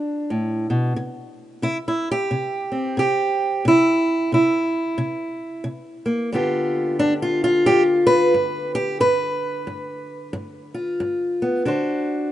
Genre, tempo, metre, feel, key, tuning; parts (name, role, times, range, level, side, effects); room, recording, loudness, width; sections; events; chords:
acoustic country blues, solo or duo; 90 BPM; 4/4; swing 61% on 8ths; G mixolydian; A4 = 441 Hz
fingerpicked steel-string acoustic guitar; solo; 0.0-12.3 s; G2 to C5; -19 LUFS; equal
light reverb; rough home demo mix, nothing above 10.6 kHz; -18 LUFS; side -12 dB against mid
0.0-12.3 A section
0.0 G; 1.0 C; 6.3 G7; 11.7 D7